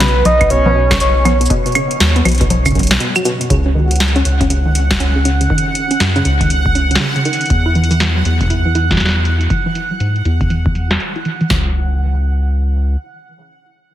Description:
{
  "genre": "IDM",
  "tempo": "120 BPM",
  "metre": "4/4",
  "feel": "swing 62% on 16ths",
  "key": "C# minor",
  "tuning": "A4 = 440 Hz",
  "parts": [
    { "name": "warbly nostalgic lead", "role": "melody", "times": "0.0-1.4 s", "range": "B4 to D#5", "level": "-17 LUFS", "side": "right 1 dB", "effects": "chorus, cassette tape, tape echo" },
    { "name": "warbly dusty pluck", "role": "arpeggios", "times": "0.0-11.7 s", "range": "F#2 to E4", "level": "-19 LUFS", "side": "right 1 dB", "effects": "chorus, tape echo" },
    { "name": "round analog bass", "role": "bass", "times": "0.0-13.0 s", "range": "B1 to G#2", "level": "-15 LUFS", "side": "equal", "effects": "none" },
    { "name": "booming analog drum machine", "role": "drums", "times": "0.0-11.5 s", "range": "cabasa, claves, congas, hi-hat, snare drum", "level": "-18 LUFS", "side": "equal", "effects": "low-pass filter on snare, low-pass filter on hats, low-pass filter on perc, low-pass filter on room, tape echo" },
    { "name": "booming analog drum machine", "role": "drums", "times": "0.4-11.6 s", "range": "kick drum, snare drum", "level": "-18 LUFS", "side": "equal", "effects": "none" },
    { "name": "bubbling stepped-filter texture", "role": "texture", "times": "3.8-11.5 s", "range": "F#5", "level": "-22 LUFS", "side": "right 3 dB", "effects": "chorus, built-in reverb" }
  ],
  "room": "light reverb",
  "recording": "heavily compressed radio sound, multiband compression",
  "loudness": "-12 LUFS",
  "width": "side -12 dB against mid",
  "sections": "0.0-3.5 A section; 3.5-11.5 B section; 11.5-13.9 C section",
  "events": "break 3.0-3.5; filter sweep on synth pluck 3.5-11.5",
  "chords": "0.0 Badd9; 3.5 C#sus4; 7.5 Esus2; 11.5 N.C."
}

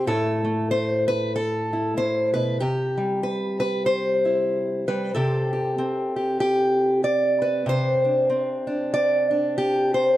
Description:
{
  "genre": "folk, solo fingerstyle acoustic guitar",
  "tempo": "95 BPM",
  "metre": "4/4",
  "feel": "swing 58% on 8ths",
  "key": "C major",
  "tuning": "A4 = 440 Hz",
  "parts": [
    { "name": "fingerpicked acoustic archtop guitar", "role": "solo", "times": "0.0-10.2 s", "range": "A2 to D5", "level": "-20 LUFS", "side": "equal", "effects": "none" }
  ],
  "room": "light reverb",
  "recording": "dark, warm production, lossy compression artefacts",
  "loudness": "-20 LUFS",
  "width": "side -14 dB against mid",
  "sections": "0.0-5.1 A section; 5.1-10.2 B section",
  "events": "none",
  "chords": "0.1 Asus2; 2.6 C; 5.1 Csus2"
}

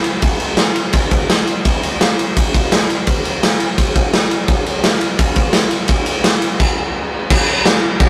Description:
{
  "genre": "rock",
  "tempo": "169 BPM",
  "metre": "4/4",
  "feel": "straight",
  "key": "none",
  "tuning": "none",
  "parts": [
    { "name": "raw garage drum kit", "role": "drums", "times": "0.0-8.1 s", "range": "crash cymbal, kick drum, ride cymbal, snare drum", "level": "-16 LUFS", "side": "equal", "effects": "none" },
    { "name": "tambourine", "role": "percussion", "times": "0.1-7.7 s", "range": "none", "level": "-35 LUFS", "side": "equal", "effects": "none" }
  ],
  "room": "light reverb",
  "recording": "rough rehearsal-room recording, tube saturation",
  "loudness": "-16 LUFS",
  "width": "mono",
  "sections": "0.0-7.3 A section",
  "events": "stop 6.6-7.3",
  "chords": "none"
}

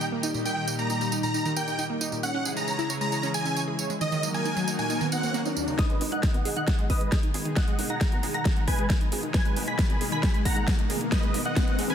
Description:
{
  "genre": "uplifting trance",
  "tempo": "135 BPM",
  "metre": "4/4",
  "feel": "straight",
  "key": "G# minor",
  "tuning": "A4 = 439 Hz",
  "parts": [
    { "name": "supersaw chords", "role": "melody", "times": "0.0-11.9 s", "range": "B4 to B5", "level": "-31 LUFS", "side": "right 1 dB", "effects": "sidechain pumping, low-pass filter, digital delay" },
    { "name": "lush unison pad", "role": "sustained chords", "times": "0.0-11.9 s", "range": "A#2 to A#4", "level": "-33 LUFS", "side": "left 1 dB", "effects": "chorus, sidechain pumping" },
    { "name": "analog pluck", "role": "arpeggios", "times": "0.0-11.9 s", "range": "D#2 to C#5", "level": "-32 LUFS", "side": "right 2 dB", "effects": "chorus, sidechain pumping, digital delay" },
    { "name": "big-room dance drum kit", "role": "drums", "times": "0.0-11.9 s", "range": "hi-hat, snare drum, tambourine", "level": "-32 LUFS", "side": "equal", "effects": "overdrive, sidechain pumping on perc, sidechain pumping on hats" },
    { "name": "riser", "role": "sound effects", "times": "3.8-11.9 s", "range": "none", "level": "-36 LUFS", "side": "left 2 dB", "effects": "none" },
    { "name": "plucky unison lead", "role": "second line", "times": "5.8-11.9 s", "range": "D#6 to B6", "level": "-37 LUFS", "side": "left 1 dB", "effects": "analog chorus, sidechain pumping, digital delay" },
    { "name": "electronic kick drum", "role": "drums", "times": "5.8-11.7 s", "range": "none", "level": "-24 LUFS", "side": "equal", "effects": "overdrive" },
    { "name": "tight sequencer bass", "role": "bass", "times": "6.0-11.9 s", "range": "G#1", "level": "-41 LUFS", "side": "equal", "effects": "none" }
  ],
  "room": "light reverb",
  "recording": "dense, heavily limited modern master",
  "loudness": "-24 LUFS",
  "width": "side -9 dB against mid",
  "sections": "0.0-5.8 A section; 5.8-11.9 B section",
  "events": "riser 3.8-5.8, 5.8-11.9; build-up 5.8-11.9; drum fill 5.8-11.9; filter sweep on supersaw synth 5.8-11.9",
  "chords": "0.0 D#; 2.2 C#m; 4.0 D#m; 5.8 G#m"
}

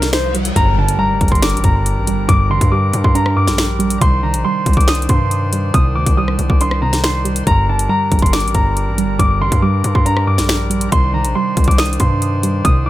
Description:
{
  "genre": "hip hop, drill",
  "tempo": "139 BPM",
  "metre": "4/4",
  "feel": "half-time",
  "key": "G minor",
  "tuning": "A4 = 436 Hz",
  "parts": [
    { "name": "warm concert grand piano", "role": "melody", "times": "0.0-12.9 s", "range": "C5 to Eb6", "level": "-19 LUFS", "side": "equal", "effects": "low-pass filter, digital delay" },
    { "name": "soft round pluck", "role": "accompaniment", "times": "0.0-12.9 s", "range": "G2 to D4", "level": "-20 LUFS", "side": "right 2 dB", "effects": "chorus, low-pass filter" },
    { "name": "distorted 808-style bass", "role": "bass", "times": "0.0-12.9 s", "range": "G1 to G2", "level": "-18 LUFS", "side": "equal", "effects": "distortion" },
    { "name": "drill drum kit", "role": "drums", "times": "0.0-12.7 s", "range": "finger snaps, hi-hat, kick drum, rim click, snare drum", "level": "-16 LUFS", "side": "equal", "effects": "none" },
    { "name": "riser and impact", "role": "sound effects", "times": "0.0-2.3 s", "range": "none", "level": "-25 LUFS", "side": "left 1 dB", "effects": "none" },
    { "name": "chamber organ, cornet", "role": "sustained chords", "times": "0.6-12.9 s", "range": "Eb3 to C5", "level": "-25 LUFS", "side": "left 1 dB", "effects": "none" }
  ],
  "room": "digital ambience",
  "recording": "none",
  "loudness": "-12 LUFS",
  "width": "side -15 dB against mid",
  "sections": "0.6-12.9 A section",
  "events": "riser 0.0-0.6; impact 0.6-2.3",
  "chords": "0.0 Cmadd9; 0.6 Gm; 4.0 Cmadd9; 7.5 Gm; 10.9 Cmadd9"
}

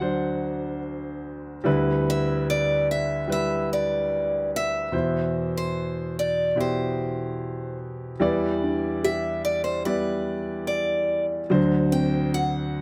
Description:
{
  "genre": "acoustic folk-pop ballad",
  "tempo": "73 BPM",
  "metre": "4/4",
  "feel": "straight",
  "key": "E minor",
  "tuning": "A4 = 440 Hz",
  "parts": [
    { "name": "picked acoustic archtop guitar", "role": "melody", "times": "0.0-12.8 s", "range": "B4 to G5", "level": "-29 LUFS", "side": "equal", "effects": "none" },
    { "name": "warm grand piano", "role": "accompaniment", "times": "0.0-12.8 s", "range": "D2 to D5", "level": "-28 LUFS", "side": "equal", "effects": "none" },
    { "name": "felt-muted upright piano", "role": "arpeggios", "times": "8.2-12.8 s", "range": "F#3 to G4", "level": "-31 LUFS", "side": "equal", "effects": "none" }
  ],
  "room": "light reverb",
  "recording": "close, detailed microphones",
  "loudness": "-25 LUFS",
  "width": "mono",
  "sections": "0.0-12.8 A section",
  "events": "none",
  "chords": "0.0 D7; 1.7 G6/D; 4.9 Cmaj7/E; 8.2 Em7; 11.5 D7"
}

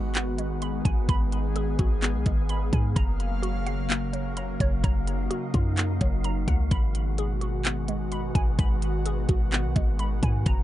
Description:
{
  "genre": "hip hop, atmospheric cloud-rap",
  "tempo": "128 BPM",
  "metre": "4/4",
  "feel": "half-time",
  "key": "unclear",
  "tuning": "A4 = 439 Hz",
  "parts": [
    { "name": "airy breathy pad", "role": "sustained chords", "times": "0.0-10.6 s", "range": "B2 to E#5", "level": "-32 LUFS", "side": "equal", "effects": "chorus, sidechain pumping" },
    { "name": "glassy wavetable pluck", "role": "arpeggios", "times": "0.0-10.6 s", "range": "F#3 to B5", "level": "-35 LUFS", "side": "equal", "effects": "chorus, ping-pong delay" },
    { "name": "clean 808-style bass", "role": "bass", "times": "0.0-10.6 s", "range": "F#1 to G#2", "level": "-27 LUFS", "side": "equal", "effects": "none" },
    { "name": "wind-like tuned noise texture", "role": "texture", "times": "0.0-10.6 s", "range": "A#3 to F#5", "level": "-41 LUFS", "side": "left 1 dB", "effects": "built-in reverb" },
    { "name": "trap drum kit", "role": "drums", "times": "0.1-10.6 s", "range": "handclaps, hi-hat, kick drum", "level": "-25 LUFS", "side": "equal", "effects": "none" }
  ],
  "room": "little or no reverb",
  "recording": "dark, warm production, nothing above 10.3 kHz",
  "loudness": "-23 LUFS",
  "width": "side -14 dB against mid",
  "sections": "0.0-10.6 A section",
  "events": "none",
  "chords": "0.0 G#m7; 3.0 F#maj7; 6.7 G#m7"
}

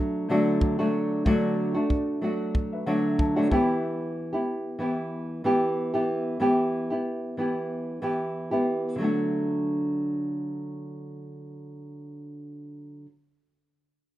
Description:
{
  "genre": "acoustic pop",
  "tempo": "93 BPM",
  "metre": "4/4",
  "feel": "swing 55% on 16ths",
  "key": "D major",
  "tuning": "A4 = 440 Hz",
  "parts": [
    { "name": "nylon-string guitar", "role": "accompaniment", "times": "0.0-13.1 s", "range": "D3 to G4", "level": "-25 LUFS", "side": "equal", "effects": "plate reverb" },
    { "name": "warm upright piano", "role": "accompaniment", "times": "0.0-3.9 s", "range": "A3 to A5", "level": "-34 LUFS", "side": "left 3 dB", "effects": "none" },
    { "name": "kick drum", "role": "drums", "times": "0.6-3.7 s", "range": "none", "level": "-25 LUFS", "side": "equal", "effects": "none" }
  ],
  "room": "wet studio reverb, RT60 0.5 s",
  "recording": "rough home demo mix",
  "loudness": "-24 LUFS",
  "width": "side -14 dB against mid",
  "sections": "0.0-9.0 A section; 9.0-11.6 B section",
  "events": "none",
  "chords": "0.0 D; 3.5 Em; 9.0 D"
}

